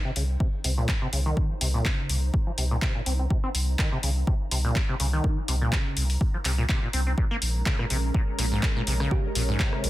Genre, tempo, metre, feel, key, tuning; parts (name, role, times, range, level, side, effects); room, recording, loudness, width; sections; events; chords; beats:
acid house; 124 BPM; 4/4; swing 54% on 16ths; C phrygian; A4 = 440 Hz
acid bass, saw; riff; 0.0-9.9 s; Ab2 to C4; -31 LUFS; equal; tube saturation, lush chorus, sidechain pumping, dub echo
granular cloud pad; texture; 0.1-9.9 s; Ab3 to Bb5; -42 LUFS; equal; built-in reverb, sidechain pumping
warm sub bass; bass; 0.2-9.9 s; Bb1 to C2; -26 LUFS; equal; sidechain pumping
punchy analog drum machine; drums; 0.2-9.9 s; handclaps, hi-hat, rim click; -30 LUFS; equal
electronic kick drum; drums; 0.4-9.7 s; -26 LUFS; equal
lush unison pad; sustained chords; 7.5-9.9 s; Ab3 to Bb4; -34 LUFS; right 1 dB; chorus, phaser, sidechain pumping
thumb-piano-like synth pluck; melody; 9.1-9.5 s; G4; -37 LUFS; right 8 dB; chorus, vintage 12-bit sampler grit, dub echo
digital ambience; dense, heavily limited modern master; -23 LUFS; side -16 dB against mid
0.0-9.9 A section
fade-in on ambient pad 0.0-9.9; filter sweep on acid bass 0.0-9.9
0.0 Cm7; 7.2 Bbm7
0.40 0.89 | 1.37 1.85 2.34 2.82 | 3.31 3.79 4.27 4.76 | 5.24 5.72 6.21 6.69 | 7.18 7.66 8.14 8.63 | 9.11 9.60